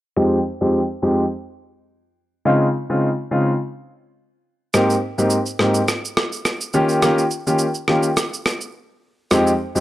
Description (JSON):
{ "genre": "afrobeats", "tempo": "105 BPM", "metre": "4/4", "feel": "swing 55% on 16ths", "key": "F minor", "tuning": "A4 = 440 Hz", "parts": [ { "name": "clear grand piano", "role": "accompaniment", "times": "0.2-9.8 s", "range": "F2 to G4", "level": "-17 LUFS", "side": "equal", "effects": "low-pass filter" }, { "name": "electronic rim click and shaker", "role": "drums", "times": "4.7-9.8 s", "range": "none", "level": "-22 LUFS", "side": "right 1 dB", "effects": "none" } ], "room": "light reverb, small room ambience", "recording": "dry, gritty hardware recording", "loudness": "-17 LUFS", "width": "side -15 dB against mid", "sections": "0.2-9.3 A section", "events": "filter sweep on grand piano 0.2-9.3; break 8.7-9.3; kick muted 9.3-9.8", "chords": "0.2 Fm7; 2.5 Dbmaj7; 4.7 Abmaj7; 6.7 Eb7", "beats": "| 0.17 0.74 1.31 1.88 | 2.46 3.03 3.60 4.17 | 4.74 5.31 5.88 6.46 | 7.03 7.60 8.17 8.74 | 9.31" }